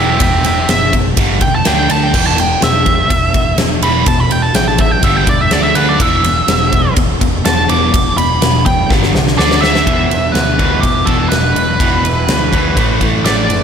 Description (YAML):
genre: hard rock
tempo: 124 BPM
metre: 4/4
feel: straight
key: E minor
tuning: A4 = 439 Hz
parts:
  - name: nasal lead guitar with a parked wah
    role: melody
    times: 0.0-13.6 s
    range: G4 to D6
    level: -16 LUFS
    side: right 2 dB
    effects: overdrive, analog delay
  - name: overdriven semi-hollow guitar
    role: riff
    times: 0.0-13.6 s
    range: E2 to D4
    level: -20 LUFS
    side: right 9 dB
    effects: slapback echo
  - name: sludgy distorted guitar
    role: riff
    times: 0.0-13.6 s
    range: E2 to D4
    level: -20 LUFS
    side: left 10 dB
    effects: overdrive
  - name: overdriven picked electric bass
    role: bass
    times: 0.0-13.6 s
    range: E1 to D2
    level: -18 LUFS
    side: equal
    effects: none
  - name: huge arena drum kit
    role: drums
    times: 0.2-13.6 s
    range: crash cymbal, kick drum, ride cymbal, snare drum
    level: -14 LUFS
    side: equal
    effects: none
  - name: overdriven electric guitar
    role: riff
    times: 9.9-13.6 s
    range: E2 to A3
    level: -21 LUFS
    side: equal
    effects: slapback echo
room: moderate lush hall reverb, RT60 1.6 s, small room ambience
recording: big arena sound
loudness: -10 LUFS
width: side -7 dB against mid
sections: 0.0-9.9 A section; 9.9-13.6 B section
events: lead electric guitar solo 0.0-9.9; drum fill 8.9-9.9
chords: 0.0 Em; 1.2 G5; 1.7 D5; 2.1 E5; 5.0 G5; 5.5 D5; 6.0 E5; 8.9 G5; 9.4 D5; 9.9 E5; 12.8 A5